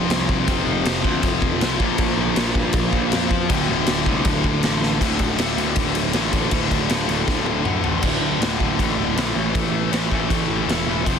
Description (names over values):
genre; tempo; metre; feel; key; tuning
punk rock; 159 BPM; 4/4; straight; D minor; A4 = 441 Hz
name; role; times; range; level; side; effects
sludgy distorted guitar; riff; 0.0-11.2 s; D2 to Bb3; -25 LUFS; right 13 dB; overdrive
tight distorted guitar; riff; 0.0-11.2 s; D2 to Bb3; -23 LUFS; left 15 dB; distortion
fuzz picked electric bass; bass; 0.0-11.2 s; D1 to G2; -26 LUFS; equal; overdrive
raw garage drum kit; drums; 0.1-11.2 s; crash cymbal, kick drum, snare drum, toms; -22 LUFS; equal; none
room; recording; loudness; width
little or no reverb; dense, heavily limited modern master; -18 LUFS; side -7 dB against mid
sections
0.0-5.0 A section; 5.0-8.0 B section; 8.0-11.2 C section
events
drum fill 4.8, 7.3-8.0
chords
0.0 F5; 1.8 Bb5; 3.5 D5; 9.4 A5